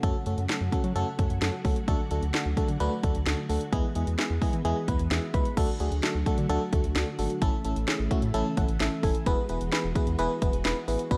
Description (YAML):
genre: synth-pop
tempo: 130 BPM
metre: 4/4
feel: straight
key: unclear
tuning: A4 = 439 Hz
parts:
  - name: FM electric piano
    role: accompaniment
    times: 0.0-11.2 s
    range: G#3 to B5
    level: -33 LUFS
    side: equal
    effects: chorus
  - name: ensemble organ-string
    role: sustained chords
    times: 0.0-11.2 s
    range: C#3 to F#4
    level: -37 LUFS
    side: equal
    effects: ensemble chorus
  - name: round analog bass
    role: bass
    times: 0.0-11.2 s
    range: E1 to F#3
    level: -32 LUFS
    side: equal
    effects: none
  - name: house drum kit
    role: drums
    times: 0.0-11.2 s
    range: crash cymbal, hi-hat, kick drum, snare drum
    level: -30 LUFS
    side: equal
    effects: overdrive
room: light reverb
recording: dark, warm production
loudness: -27 LUFS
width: mono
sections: 0.0-5.6 A section; 5.6-11.2 B section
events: FM electric piano fill 4.9-5.6, 8.3-9.3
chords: 0.0 F#m; 1.9 D; 3.7 Eadd9; 5.6 D; 7.4 A; 9.3 Eadd9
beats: | 0.03 0.49 0.96 1.42 | 1.88 2.34 2.80 3.26 | 3.73 4.19 4.65 5.11 | 5.57 6.03 6.50 6.96 | 7.42 7.88 8.34 8.80 | 9.26 9.73 10.19 10.65 | 11.11